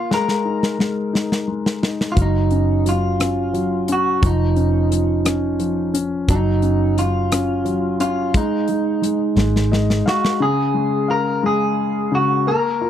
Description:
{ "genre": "six-eight pop ballad", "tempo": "58 BPM (dotted quarters)", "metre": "6/8", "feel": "straight", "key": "Db major", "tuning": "A4 = 442 Hz", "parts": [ { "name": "electric guitar at the edge of break-up", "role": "melody", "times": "0.0-12.9 s", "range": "Eb4 to Bb4", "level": "-21 LUFS", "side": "right 3 dB", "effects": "spring reverb" }, { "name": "warm grand piano", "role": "accompaniment", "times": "0.0-12.9 s", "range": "Db3 to F5", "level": "-21 LUFS", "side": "left 4 dB", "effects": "none" }, { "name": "modern studio drum kit", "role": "drums", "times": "0.1-10.4 s", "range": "hi-hat, kick drum, rim click, snare drum", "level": "-21 LUFS", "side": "equal", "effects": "none" }, { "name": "vintage muted fingered electric bass", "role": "bass", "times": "2.2-10.0 s", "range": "F1 to Ab1", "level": "-20 LUFS", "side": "equal", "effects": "none" } ], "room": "little or no reverb", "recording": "dry, close 1970s-style studio recording", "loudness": "-16 LUFS", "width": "side -10 dB against mid", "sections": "0.0-10.4 A section; 10.4-12.9 B section", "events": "drum fill 0.1-2.2, 9.4-10.4; grand piano fill 9.4-10.4", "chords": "0.1 Absus2; 2.2 Gb5; 4.2 Dbadd9/F; 6.3 Gb5; 8.3 Ab5; 10.4 Db" }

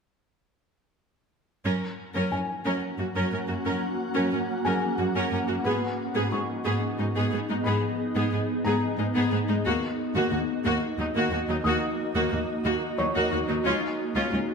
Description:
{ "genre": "cinematic", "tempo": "60 BPM (dotted quarters)", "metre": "6/8", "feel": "straight", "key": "unclear", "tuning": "A4 = 440 Hz", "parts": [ { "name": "bright symphonic viola section", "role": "accompaniment", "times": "1.6-14.4 s", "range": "F#3 to A#4", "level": "-28 LUFS", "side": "equal", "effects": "none" }, { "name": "swarming drone", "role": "sustained chords", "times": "2.4-14.5 s", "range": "G#3 to F#5", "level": "-29 LUFS", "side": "equal", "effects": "built-in reverb" }, { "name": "dark symphonic cello section", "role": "bass", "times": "1.7-14.4 s", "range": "C#2 to G#2", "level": "-30 LUFS", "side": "right 1 dB", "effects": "none" }, { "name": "felt-muted upright piano", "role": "texture", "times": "2.3-14.5 s", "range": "G#4 to D#6", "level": "-35 LUFS", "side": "left 3 dB", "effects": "tape echo" } ], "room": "moderate scoring stage reverb, RT60 1.6 s", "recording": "none", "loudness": "-24 LUFS", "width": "side -5 dB against mid", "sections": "1.7-14.5 A section", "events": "build-up 1.7-14.5", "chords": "1.7 F#; 5.7 G#m; 9.7 D#m; 13.7 C#" }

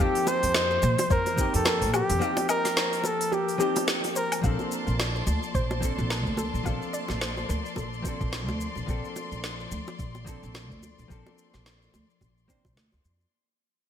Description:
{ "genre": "sunset chillout", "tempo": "108 BPM", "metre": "4/4", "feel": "swing 57% on 16ths", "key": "Bb major", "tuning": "A4 = 440 Hz", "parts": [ { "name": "warm flugelhorn", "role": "melody", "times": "0.0-4.4 s", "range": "G4 to C5", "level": "-27 LUFS", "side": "equal", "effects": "digital delay" }, { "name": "hollow-body jazz guitar", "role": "accompaniment", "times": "0.0-12.6 s", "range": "F3 to C5", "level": "-33 LUFS", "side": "moving between left 5 dB and right 2 dB", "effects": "auto-pan, ping-pong delay" }, { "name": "soft round pluck", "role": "arpeggios", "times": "0.0-7.9 s", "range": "G4 to F5", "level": "-34 LUFS", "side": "left 2 dB", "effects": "chorus, ping-pong delay" }, { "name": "upright bass", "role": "bass", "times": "0.0-13.2 s", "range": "Bb1 to Bb2", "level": "-30 LUFS", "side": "equal", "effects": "none" }, { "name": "deep house drum kit", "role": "drums", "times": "0.2-13.3 s", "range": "hi-hat, shaker, snare drum, woodblock", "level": "-31 LUFS", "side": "equal", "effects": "studio ambience, gated reverb" }, { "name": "bongos", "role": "percussion", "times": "0.3-13.0 s", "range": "none", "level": "-37 LUFS", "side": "right 1 dB", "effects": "none" }, { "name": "electronic kick drum", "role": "drums", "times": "1.1-12.7 s", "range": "none", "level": "-30 LUFS", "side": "equal", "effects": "studio ambience" }, { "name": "clear symphonic string section", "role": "sustained chords", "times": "4.4-13.3 s", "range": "Bb3 to C6", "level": "-37 LUFS", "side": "left 1 dB", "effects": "none" } ], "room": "moderate plate reverb, RT60 2.9 s", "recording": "bright 1980s-style digital production", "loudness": "-24 LUFS", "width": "side -9 dB against mid", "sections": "0.0-4.4 A section; 4.4-13.3 B section", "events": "break 2.2-4.4; fade-out 4.4-13.3", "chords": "0.0 F9sus4; 4.4 Bbmaj9" }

